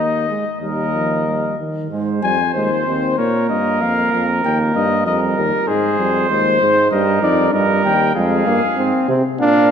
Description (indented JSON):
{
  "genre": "classical, imitative canzona for brass ensemble",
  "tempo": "96 BPM",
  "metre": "4/4",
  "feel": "straight",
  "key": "Ab major",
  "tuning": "A4 = 440 Hz",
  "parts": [
    { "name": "mellow cornet", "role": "melody", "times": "0.0-9.7 s", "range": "Ab4 to Ab5", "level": "-19 LUFS", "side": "left 6 dB", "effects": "none" },
    { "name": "warm trumpet", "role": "second line", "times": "0.0-9.7 s", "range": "Eb4 to C5", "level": "-22 LUFS", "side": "right 5 dB", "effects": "none" },
    { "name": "dark trombone", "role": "accompaniment", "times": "0.0-9.7 s", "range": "Eb3 to Eb4", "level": "-20 LUFS", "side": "right 2 dB", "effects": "none" },
    { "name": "dark euphonium", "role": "bass", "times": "0.0-9.7 s", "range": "Eb2 to C3", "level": "-21 LUFS", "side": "right 1 dB", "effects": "none" }
  ],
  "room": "wet scoring stage reverb, RT60 2.1 s",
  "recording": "none",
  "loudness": "-15 LUFS",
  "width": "side -8 dB against mid",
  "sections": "0.0-1.9 A section; 1.9-9.7 B section",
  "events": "none",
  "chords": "0.0 Ebsus4; 0.6 Eb; 1.9 Ab; 3.2 Bbm; 4.4 Eb; 5.7 Ab; 6.9 Eb; 8.2 Fm"
}